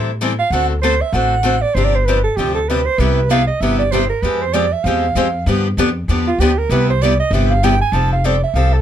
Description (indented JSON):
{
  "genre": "acoustic string swing (jazz manouche)",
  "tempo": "194 BPM",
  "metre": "4/4",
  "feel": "swing 59% on 8ths",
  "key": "C major",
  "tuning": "A4 = 439 Hz",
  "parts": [
    { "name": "breathy soprano saxophone", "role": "second line", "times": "0.0-8.8 s", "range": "F4 to A5", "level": "-18 LUFS", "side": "right 5 dB", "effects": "none" },
    { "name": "picked steel-string acoustic guitar", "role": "accompaniment", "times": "0.0-8.8 s", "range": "C3 to A4", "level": "-19 LUFS", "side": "left 4 dB", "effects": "none" },
    { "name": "upright bass", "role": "bass", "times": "0.0-8.8 s", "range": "F1 to A2", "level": "-18 LUFS", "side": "equal", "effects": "none" },
    { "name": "picked steel-string acoustic guitar", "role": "accompaniment", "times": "3.0-7.7 s", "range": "C3 to G4", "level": "-24 LUFS", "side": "right 7 dB", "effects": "none" }
  ],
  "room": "light reverb",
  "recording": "close, detailed microphones",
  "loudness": "-14 LUFS",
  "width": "side -10 dB against mid",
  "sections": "0.0-7.9 A section",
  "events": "soprano saxophone solo 0.0-8.8",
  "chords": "0.0 Am7; 0.5 D7; 1.8 G7sus4; 3.0 Cmaj7; 4.2 Fmadd9; 5.5 G7; 6.7 Cmaj7; 7.9 Fadd9"
}